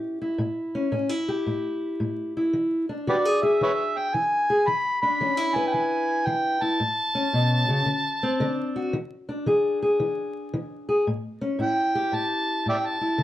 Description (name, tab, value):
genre	acoustic country blues, solo or duo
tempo	112 BPM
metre	4/4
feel	swing 65% on 8ths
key	A mixolydian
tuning	A4 = 440 Hz
part	fingerpicked steel-string acoustic guitar	accompaniment	0.0-13.2 s	A2 to B4	-24 LUFS	left 1 dB	none
part	overdriven harmonica	melody	3.1-13.2 s	G4 to B5	-24 LUFS	equal	slapback echo
room	light reverb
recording	dark, warm production, vinyl crackle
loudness	-22 LUFS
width	side -13 dB against mid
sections	0.0-11.1 A section; 11.1-13.2 B section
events	harmonica solo 11.1-13.2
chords	0.0 A7; 2.5 E7; 6.8 A; 7.9 D7; 8.9 E7; 11.1 A7